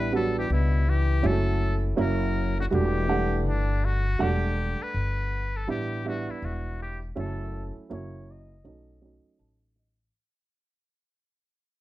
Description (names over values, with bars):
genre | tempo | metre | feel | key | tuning
hip hop, jazz-hop | 81 BPM | 4/4 | swing 62% on 16ths | E dorian | A4 = 438 Hz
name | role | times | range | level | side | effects
trumpet with metal mute | melody | 0.0-9.8 s | D4 to D#5 | -33 LUFS | left 2 dB | low-pass filter, slapback echo
mellow trombone | second line | 0.0-3.8 s | B2 to G3 | -34 LUFS | left 9 dB | none
warm grand piano | accompaniment | 0.0-10.1 s | F#3 to A5 | -29 LUFS | right 4 dB | low-pass filter
upright bass | bass | 0.0-10.1 s | E1 to C#2 | -27 LUFS | left 1 dB | none
room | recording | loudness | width
light reverb | dark, warm production | -24 LUFS | side -16 dB against mid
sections
0.0-4.2 A section; 4.2-10.1 B section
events
fade-out 4.2-10.1; filter sweep 4.2-10.1; grand piano fill 9.0-10.1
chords
0.0 A9sus4; 1.2 F#m7; 2.0 F#7; 2.7 Em11; 5.7 A9sus4; 7.2 F#m7; 7.9 F#7; 8.6 B9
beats
0.50 | 1.24 1.98 2.72 3.46 | 4.20 4.94 5.68 6.42 | 7.17 7.91 8.65 9.39